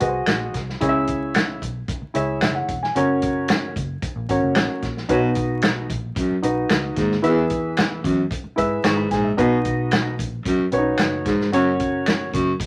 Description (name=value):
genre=uptempo 1960s-style soul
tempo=112 BPM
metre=4/4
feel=straight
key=B major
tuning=A4 = 436 Hz
part: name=dark baby grand piano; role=accompaniment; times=0.0-12.3 s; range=B2 to C#6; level=-24 LUFS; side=equal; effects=none
part: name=vintage muted picked electric bass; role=bass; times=0.0-12.5 s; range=E1 to G#2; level=-32 LUFS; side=equal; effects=none
part: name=natural country drum kit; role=drums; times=0.0-12.7 s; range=hi-hat, kick drum, snare drum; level=-27 LUFS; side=equal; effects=none
part: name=finger snap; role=percussion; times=0.3-12.2 s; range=none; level=-27 LUFS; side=equal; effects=none
part: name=breathy baritone saxophone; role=riff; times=5.1-12.5 s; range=E2 to B2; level=-24 LUFS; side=equal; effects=none
room=light reverb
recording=vinyl crackle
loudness=-21 LUFS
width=mono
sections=0.0-12.7 A section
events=none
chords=0.0 G#7; 0.8 C#m; 3.0 F#; 5.1 B; 7.2 E; 9.4 B; 11.5 F#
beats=0.28 | 0.82 1.35 1.89 2.42 | 2.96 3.49 4.03 4.56 | 5.10 5.63 6.17 6.71 | 7.24 7.78 8.31 8.85 | 9.38 9.92 10.46 10.99 | 11.53 12.06 12.60